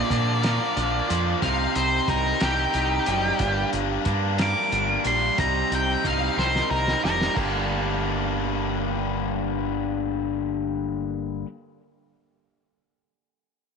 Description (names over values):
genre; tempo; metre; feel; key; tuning
indie rock; 61 BPM (dotted quarters); 6/8; straight; G minor; A4 = 440 Hz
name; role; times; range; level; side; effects
octave-fuzz lead guitar; melody; 0.0-7.4 s; G4 to D6; -26 LUFS; equal; distortion, tape echo
biting overdriven guitar; riff; 0.0-11.5 s; G2 to F4; -27 LUFS; left 14 dB; none
crunchy overdriven guitar; riff; 0.0-11.5 s; G2 to Bb4; -29 LUFS; right 14 dB; wide subtle chorus, tape echo
growling fingered electric bass; bass; 0.1-11.4 s; F1 to Bb2; -28 LUFS; equal; overdrive
cloth-damped thuddy drum kit; drums; 0.1-7.5 s; crash cymbal, hi-hat, kick drum, snare drum; -30 LUFS; equal; none
room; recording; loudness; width
light reverb, small room reverb; 1960s-style stereo with parts hard left and right, nothing above 10.7 kHz; -22 LUFS; side -6 dB against mid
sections
0.0-7.4 A section; 7.4-11.3 B section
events
lead electric guitar solo 0.0-7.4; drum fill 6.4-7.4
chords
0.0 Bb; 1.4 Cm7; 3.4 Gm; 5.4 Cm7; 7.4 Gm